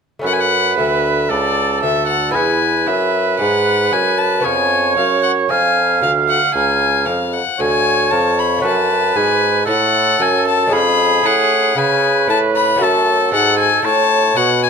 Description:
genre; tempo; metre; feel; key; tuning
classical, baroque-style sonata movement with continuo; 57 BPM; 4/4; straight; F# minor; A4 = 440 Hz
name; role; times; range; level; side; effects
clear oboe; second line; 0.2-14.6 s; G#4 to E#5; -18 LUFS; right 8 dB; none
lute; accompaniment; 0.2-14.7 s; D2 to A4; -24 LUFS; left 1 dB; none
mellow bassoon; bass; 0.2-14.7 s; C#2 to C#3; -19 LUFS; right 2 dB; none
warm violin; melody; 0.3-14.7 s; D5 to B5; -17 LUFS; left 9 dB; none
room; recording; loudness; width
light reverb; close, detailed microphones; -13 LUFS; side -6 dB against mid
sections
0.3-14.7 A section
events
none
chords
0.3 F#m; 2.4 E; 4.5 C#; 8.6 F#m; 10.7 C#7/E#; 12.8 F#m

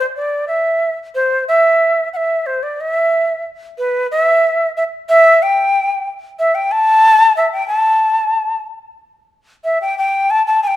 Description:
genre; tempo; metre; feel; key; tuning
andean folk; 92 BPM; 2/4; straight; unclear; A4 = 440 Hz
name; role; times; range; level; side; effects
mellow quena; solo; 0.0-10.8 s; B4 to A5; -12 LUFS; equal; none
room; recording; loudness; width
light reverb; minimal, uncompressed stereo recording; -12 LUFS; side -14 dB against mid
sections
0.0-9.0 A section; 9.0-10.8 B section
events
none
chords
none

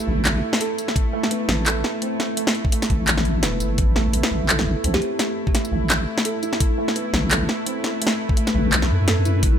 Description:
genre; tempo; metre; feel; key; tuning
half-time drum and bass; 170 BPM; 4/4; swing 56% on 16ths, half-time; unclear; A4 = 441 Hz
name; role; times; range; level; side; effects
bowed-like drone; sustained chords; 0.0-9.6 s; A3 to B4; -27 LUFS; left 1 dB; built-in reverb, sidechain pumping
felt-muted upright piano; arpeggios; 0.0-9.6 s; A3 to A4; -28 LUFS; right 4 dB; ping-pong delay
drum and bass drum kit; drums; 0.0-9.5 s; handclaps, hi-hat, snare drum, tambourine; -22 LUFS; equal; none
deep soft wobble bass; bass; 0.1-9.6 s; E1 to F#2; -21 LUFS; equal; chorus, tube saturation
electronic kick drum; drums; 1.0-9.5 s; none; -20 LUFS; equal; none
kalimba; melody; 4.9-5.4 s; G4; -30 LUFS; left 1 dB; digital delay
room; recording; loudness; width
light reverb; none; -18 LUFS; side -9 dB against mid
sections
0.0-9.6 A section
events
none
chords
0.0 A5

